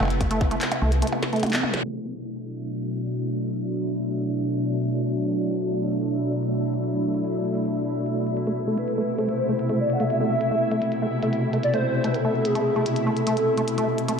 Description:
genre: IDM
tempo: 147 BPM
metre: 4/4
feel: straight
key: unclear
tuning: A4 = 440 Hz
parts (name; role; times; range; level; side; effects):
- soft string machine; sustained chords; 0.0-14.2 s; B2 to E4; -25 LUFS; equal; ensemble chorus
- deep acid bass; arpeggios; 0.0-1.6, 8.5-14.1 s; A3 to C4; -28 LUFS; right 1 dB; tape echo
- woody FM bass; bass; 0.0-1.0 s; F#1 to C2; -24 LUFS; equal; tube saturation
- glitchy drum kit; drums; 0.0-14.2 s; handclaps, hi-hat, percussion blips, snare drum, toms; -29 LUFS; equal; studio reverb, ping-pong delay
- electronic kick drum; drums; 0.2-0.5 s; none; -23 LUFS; equal; studio reverb
- bubbling stepped-filter texture; texture; 2.2-14.2 s; E4 to E5; -35 LUFS; left 2 dB; chorus, built-in reverb
- warbly nostalgic lead; melody; 8.8-14.2 s; G#4 to F#5; -26 LUFS; equal; ensemble chorus, cassette tape, ping-pong delay
room: wet lush hall reverb, RT60 1.8 s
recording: dreamy mix soaked in reverb, low-pass filter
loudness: -22 LUFS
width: side -6 dB against mid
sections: 0.0-1.8 A section; 1.8-14.2 B section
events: drum fill 1.2-1.8; band accent 1.7; filter sweep on string machine 1.8-14.2; filter sweep 1.8-14.2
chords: 0.0 Amadd9; 1.8 Bm7; 8.4 Amadd9

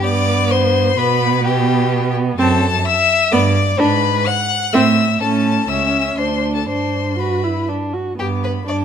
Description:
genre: quick classical-period movement for string quartet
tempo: 127 BPM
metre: 3/4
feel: rubato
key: G major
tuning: A4 = 440 Hz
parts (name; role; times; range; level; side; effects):
- rich violin; melody; 0.0-8.8 s; G5 to F#6; -20 LUFS; left 9 dB; none
- rich violin; second line; 0.0-8.8 s; G4 to F#5; -21 LUFS; left 5 dB; none
- dark viola; accompaniment; 0.0-8.8 s; B3 to F#4; -20 LUFS; right 2 dB; none
- rich cello; bass; 0.0-8.8 s; C#2 to B2; -19 LUFS; right 4 dB; none
room: moderate stone room reverb, RT60 1.3 s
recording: none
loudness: -14 LUFS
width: side -8 dB against mid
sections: 0.0-8.2 A section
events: none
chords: 0.0 G; 1.0 G/B; 2.4 F#m7b5; 3.3 G; 3.8 G#m7b5; 4.7 Am; 5.2 A; 6.2 Amadd11/D; 6.7 G

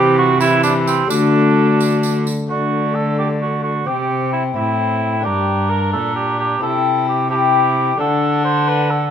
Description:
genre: classical, renaissance-style consort dance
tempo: 87 BPM (dotted quarters)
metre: 6/8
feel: straight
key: D mixolydian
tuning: A4 = 440 Hz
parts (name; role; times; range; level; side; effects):
- mellow hollow alto recorder; melody; 0.0-9.1 s; F#4 to Bb5; -22 LUFS; left 4 dB; none
- mellow cor anglais; second line; 0.0-9.1 s; C4 to C5; -19 LUFS; right 6 dB; none
- lute; accompaniment; 0.0-9.1 s; G2 to G4; -23 LUFS; left 9 dB; none
- warm viola; accompaniment; 0.0-9.1 s; E3 to E4; -22 LUFS; left 3 dB; none
- rich cello; bass; 0.0-9.1 s; G2 to D3; -21 LUFS; right 1 dB; none
- tambourine; percussion; 0.4-2.5 s; none; -30 LUFS; right 6 dB; none
room: wet stone room reverb, RT60 1.2 s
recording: none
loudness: -14 LUFS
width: side -8 dB against mid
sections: 0.0-2.5 A section; 2.5-9.1 B section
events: none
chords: 0.0 C; 1.1 D; 3.9 C; 5.3 Gm; 6.6 C; 8.0 D

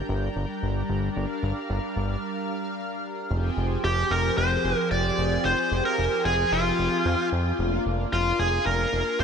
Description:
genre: synthwave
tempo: 112 BPM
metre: 4/4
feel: straight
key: F dorian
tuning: A4 = 436 Hz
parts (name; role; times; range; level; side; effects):
- analog string pad; sustained chords; 0.0-9.2 s; F3 to G5; -29 LUFS; equal; ensemble chorus
- fat analog bass; bass; 0.0-9.2 s; F1 to F2; -27 LUFS; equal; none
- smooth overdriven lead guitar; melody; 3.8-9.2 s; F4 to D5; -24 LUFS; equal; digital delay
room: moderate lush hall reverb, RT60 2.8 s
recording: bright 1980s-style digital production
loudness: -23 LUFS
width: side -6 dB against mid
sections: 0.0-3.3 A section; 3.3-9.2 B section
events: break 2.2-3.3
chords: 0.0 Gm; 3.3 Fmadd9; 7.6 Bb/F

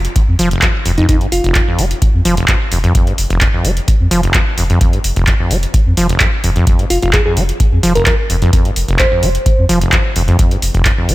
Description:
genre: acid house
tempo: 129 BPM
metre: 4/4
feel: straight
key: F minor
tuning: A4 = 440 Hz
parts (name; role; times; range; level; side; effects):
- warm sub bass; bass; 0.0-11.1 s; F1 to F2; -16 LUFS; equal; sidechain pumping
- electro analog drum machine; drums; 0.0-11.1 s; handclaps, hi-hat; -18 LUFS; right 1 dB; none
- electronic kick drum; drums; 0.2-11.0 s; none; -14 LUFS; equal; none
- acid bass, saw; riff; 0.4-11.1 s; F1 to Ab3; -16 LUFS; equal; tube saturation, cassette tape, sidechain pumping, ping-pong delay
- bell-like FM electric piano; melody; 1.0-2.0, 6.9-9.6 s; Eb4 to C5; -19 LUFS; equal; chorus, tape echo
room: little or no reverb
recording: none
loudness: -11 LUFS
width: side -17 dB against mid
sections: 0.0-11.1 A section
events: filter sweep on acid bass 0.0-11.1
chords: none

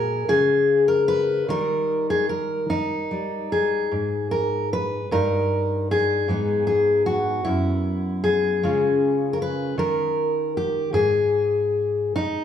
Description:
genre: folk, solo fingerstyle acoustic guitar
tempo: 51 BPM (dotted quarters)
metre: 6/8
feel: rubato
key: G# minor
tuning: A4 = 441 Hz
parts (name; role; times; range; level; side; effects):
- fingerpicked steel-string acoustic guitar; solo; 0.0-12.4 s; F#2 to B4; -20 LUFS; left 1 dB; none
room: wet studio reverb, RT60 0.8 s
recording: heard from further back in the room, small room reverb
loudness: -20 LUFS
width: side -9 dB against mid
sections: 0.0-12.4 A section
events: none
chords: 0.0 N.C.; 1.5 D#; 3.9 N.C.; 5.1 D#/G; 6.3 G#m; 7.4 Esus2; 8.6 C#; 9.8 N.C.; 10.9 G#5

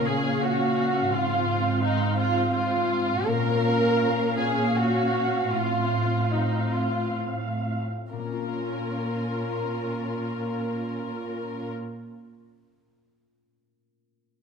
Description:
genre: cinematic, emotional film score for orchestra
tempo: 62-86 BPM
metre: 3/4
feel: rubato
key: Bb minor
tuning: A4 = 440 Hz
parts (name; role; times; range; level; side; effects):
- muted symphonic violin section; second line; 0.0-11.7 s; Eb4 to Bb4; -27 LUFS; equal; none
- muted studio viola section; accompaniment; 0.0-11.7 s; C4 to F5; -30 LUFS; right 1 dB; none
- concert harp; arpeggios; 0.0-12.1 s; Ab2 to F5; -33 LUFS; left 10 dB; none
- muted symphonic cello section; bass; 0.0-11.7 s; Ab2 to Bb2; -29 LUFS; right 2 dB; none
room: moderate scoring stage reverb, RT60 1.9 s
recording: close, detailed microphones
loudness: -23 LUFS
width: side -6 dB against mid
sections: 0.0-8.1 A section; 8.1-13.6 B section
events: slowing down 2.2-8.1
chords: 0.0 Bbm; 1.1 Fm/Ab; 3.3 Bbm; 5.5 F/A; 8.1 Bbm

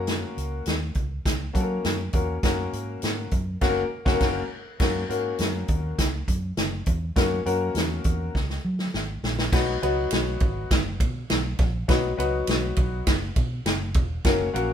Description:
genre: uptempo 1960s-style soul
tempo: 102 BPM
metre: 4/4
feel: straight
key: B major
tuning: A4 = 441 Hz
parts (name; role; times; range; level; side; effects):
- clear concert grand piano; accompaniment; 0.0-14.7 s; F#3 to B4; -27 LUFS; left 4 dB; none
- vintage muted fingered electric bass; bass; 0.0-14.7 s; E1 to F#3; -29 LUFS; right 1 dB; none
- swinging big-band drum kit; drums; 0.1-14.7 s; crash cymbal, hi-hat, kick drum, ride cymbal, snare drum; -24 LUFS; equal; none
room: light reverb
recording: band playing live in one room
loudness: -23 LUFS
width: side -9 dB against mid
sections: 0.0-4.8 A section; 4.8-9.5 B section; 9.5-14.7 C section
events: band accent 3.6-4.8; drum fill 8.3-9.5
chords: 0.0 F#; 9.5 B

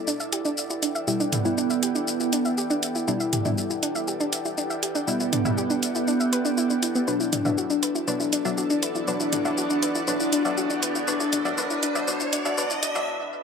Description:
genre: melodic techno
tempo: 120 BPM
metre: 4/4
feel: straight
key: E minor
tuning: A4 = 440 Hz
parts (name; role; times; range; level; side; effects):
- deep dark ambient pad; sustained chords; 0.4-13.4 s; E3 to G5; -33 LUFS; right 1 dB; chorus, built-in reverb
- soft round pluck; arpeggios; 0.0-13.0 s; B3 to E5; -29 LUFS; equal; chorus, tape echo
- filtered dub chord stab; stabs; 0.0-13.1 s; B2 to E4; -31 LUFS; left 2 dB; chorus, analog delay
- airy breathy pad; texture; 0.0-13.1 s; E4 to F#5; -34 LUFS; right 1 dB; chorus, phaser
- techno drum kit; drums; 0.1-13.1 s; hi-hat, shaker, toms; -28 LUFS; equal; none
- mellow synth brass; melody; 1.1-13.1 s; B3 to E4; -27 LUFS; equal; chorus, phaser, analog delay
- riser; sound effects; 8.8-13.1 s; none; -34 LUFS; equal; none
room: wet spring reverb, RT60 1.7 s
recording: echo-heavy mix, high-pass filter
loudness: -22 LUFS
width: side -6 dB against mid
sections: 0.0-13.4 A section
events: build-up 0.0-13.4; filter sweep on analog polysynth 0.0-13.4; riser 8.8-13.1; break 13.1-13.4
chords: 0.0 Em; 7.1 Bm

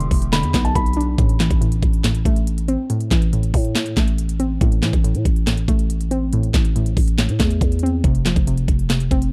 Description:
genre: hip hop, trap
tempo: 140 BPM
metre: 4/4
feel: half-time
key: A minor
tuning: A4 = 440 Hz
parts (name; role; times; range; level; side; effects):
- dark baby grand piano; melody; 0.0-1.2 s; A5 to C6; -29 LUFS; equal; digital delay
- soft round pluck; accompaniment; 0.0-9.3 s; A2 to D4; -24 LUFS; equal; chorus
- warbly tape-like pad; sustained chords; 0.0-1.1 s; D3 to G4; -41 LUFS; equal; none
- growling 808-style bass; bass; 0.0-9.3 s; E1 to A2; -23 LUFS; equal; none
- trap drum kit; drums; 0.0-9.3 s; handclaps, hi-hat, kick drum, snare drum; -21 LUFS; equal; overdrive
room: little or no reverb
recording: dark, warm production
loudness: -19 LUFS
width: mono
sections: 0.0-1.2 A section; 1.2-9.3 B section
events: none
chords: 0.0 Em7; 1.2 Am; 8.0 F5

